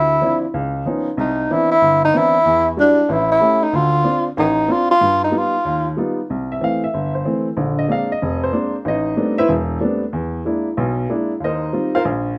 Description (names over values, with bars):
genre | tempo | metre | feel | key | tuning
jazz | 188 BPM | 4/4 | swing 64% on 8ths | unclear | A4 = 440 Hz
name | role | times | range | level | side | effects
breathy tenor saxophone | melody | 0.0-5.9 s | D4 to F4 | -17 LUFS | equal | none
warm upright piano | accompaniment | 0.0-12.3 s | E1 to F5 | -22 LUFS | equal | none
room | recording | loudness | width
moderate large studio reverb, RT60 0.9 s | none | -18 LUFS | mono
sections
0.0-6.3 A section; 6.3-12.4 A section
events
tenor saxophone solo 0.0-6.3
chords
0.0 Dm9; 0.5 Db9; 1.2 Cmaj9; 2.5 Em9; 3.1 A7; 3.7 Dm7; 5.0 Gaug7; 6.3 C6; 7.6 Bb9; 8.8 Am11; 10.1 E7#11; 11.4 Eb69